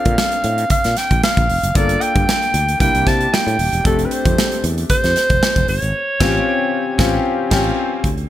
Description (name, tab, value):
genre	polished 1980s jazz-funk pop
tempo	114 BPM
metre	4/4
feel	swing 54% on 16ths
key	unclear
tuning	A4 = 439 Hz
part	breathy alto saxophone	melody	0.0-7.5 s	A4 to A5	-18 LUFS	right 1 dB	none
part	warm baby grand piano	accompaniment	0.0-8.1 s	A3 to A4	-22 LUFS	left 4 dB	analog chorus
part	sustaining fretless electric bass	bass	0.1-8.2 s	Eb1 to C3	-20 LUFS	equal	none
part	modern studio drum kit	drums	0.1-8.3 s	crash cymbal, hi-hat, kick drum, snare drum	-18 LUFS	equal	gated reverb
room	light reverb, small room reverb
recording	bright 1980s-style digital production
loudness	-14 LUFS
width	side -12 dB against mid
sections	0.0-8.0 A section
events	band accent 5.9-8.0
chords	0.0 Bbmaj7; 1.8 Gm9; 2.8 C7; 3.8 F69; 5.9 A7alt